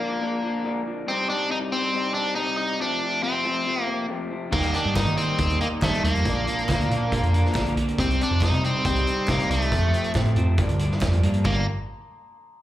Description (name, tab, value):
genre	indie rock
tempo	139 BPM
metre	4/4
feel	straight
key	G minor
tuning	A4 = 439 Hz
part	biting overdriven guitar	melody	0.0-11.7 s	A3 to Eb4	-25 LUFS	equal	slapback echo
part	electric guitar through a small old amp	riff	0.0-11.6 s	F2 to Eb4	-30 LUFS	left 4 dB	slapback echo
part	glockenspiel with hard plastic mallets	second line	4.5-11.6 s	A5 to Eb6	-39 LUFS	right 2 dB	slapback echo
part	electric guitar at the edge of break-up	riff	4.5-11.6 s	F2 to G4	-30 LUFS	right 5 dB	analog chorus, slapback echo
part	overdriven picked electric bass	bass	4.5-11.7 s	G1 to Eb3	-23 LUFS	equal	none
part	vintage drum kit	drums	4.5-11.6 s	crash cymbal, hi-hat, kick drum, snare drum	-28 LUFS	equal	none
part	group handclap	percussion	5.0-11.7 s	none	-41 LUFS	right 2 dB	none
room	small room ambience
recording	live gig heard through the venue's PA, club reverb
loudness	-21 LUFS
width	side -13 dB against mid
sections	0.0-11.5 A section; 11.5-12.6 B section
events	none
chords	0.0 Bb; 1.1 Cm; 2.8 F; 4.5 Eb; 6.3 Bb; 8.0 Cm; 9.7 F; 10.6 Gm7